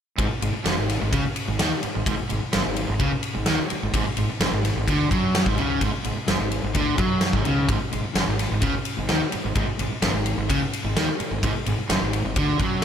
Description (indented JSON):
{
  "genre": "hard rock",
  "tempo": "128 BPM",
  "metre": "4/4",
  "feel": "straight",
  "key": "unclear",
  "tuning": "A4 = 442 Hz",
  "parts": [
    { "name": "overdriven semi-hollow guitar", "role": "riff", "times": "0.2-12.8 s", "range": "F#2 to F#3", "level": "-28 LUFS", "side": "left 7 dB", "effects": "none" },
    { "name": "overdriven semi-hollow guitar", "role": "riff", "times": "0.2-12.8 s", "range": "F#2 to F#3", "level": "-27 LUFS", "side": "right 6 dB", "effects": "none" },
    { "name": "fuzz fingered electric bass", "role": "bass", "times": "0.2-12.8 s", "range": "F#1 to F#2", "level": "-29 LUFS", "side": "equal", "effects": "overdrive" },
    { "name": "huge arena drum kit", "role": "drums", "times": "0.2-12.8 s", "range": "kick drum, ride cymbal, snare drum", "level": "-25 LUFS", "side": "equal", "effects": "none" }
  ],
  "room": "light reverb, small room ambience",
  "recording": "none",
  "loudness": "-21 LUFS",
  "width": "side -8 dB against mid",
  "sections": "0.2-12.8 A section",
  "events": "none",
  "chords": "0.2 G#5",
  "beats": "| 0.18 0.65 1.12 1.59 | 2.06 2.53 3.00 3.47 | 3.94 4.41 4.88 5.35 | 5.82 6.29 6.75 7.22 | 7.69 8.16 8.63 9.10 | 9.56 10.03 10.50 10.97 | 11.43 11.90 12.37 12.84"
}